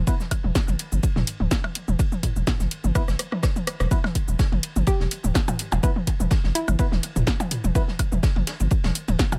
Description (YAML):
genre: minimal techno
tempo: 125 BPM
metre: 4/4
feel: swing 54% on 16ths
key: E minor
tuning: A4 = 437 Hz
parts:
  - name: saturated sub bass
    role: bass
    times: 0.0-9.2 s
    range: D1 to G1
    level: -26 LUFS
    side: equal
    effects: tube saturation, sidechain pumping
  - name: percussive organ stab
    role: stabs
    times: 0.1-7.8 s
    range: B3 to B4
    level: -36 LUFS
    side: equal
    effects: chorus, digital delay
  - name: electronic kick drum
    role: drums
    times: 0.1-9.3 s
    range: none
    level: -25 LUFS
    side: equal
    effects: overdrive
  - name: punchy analog drum machine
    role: drums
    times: 0.1-9.4 s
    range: hi-hat, rim click, shaker, snare drum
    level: -30 LUFS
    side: equal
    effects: overdrive
  - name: warm soul drum kit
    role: drums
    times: 0.1-9.4 s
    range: ride cymbal, snare drum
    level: -40 LUFS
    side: equal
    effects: high-pass filter on cymbals, high-pass filter on snare, high-pass filter on room
  - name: electronic toms and percussion blips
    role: percussion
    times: 0.2-9.4 s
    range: none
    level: -31 LUFS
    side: equal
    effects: overdrive, digital delay
  - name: hollow square pluck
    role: melody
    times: 4.9-7.0 s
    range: E4 to G4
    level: -32 LUFS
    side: equal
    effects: chorus, digital delay
room: little or no reverb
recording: none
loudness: -23 LUFS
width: mono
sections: 0.0-3.9 A section; 3.9-9.4 B section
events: drum fill 3.0-3.9; band accent 3.8; drop 3.9-9.4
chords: 0.0 E5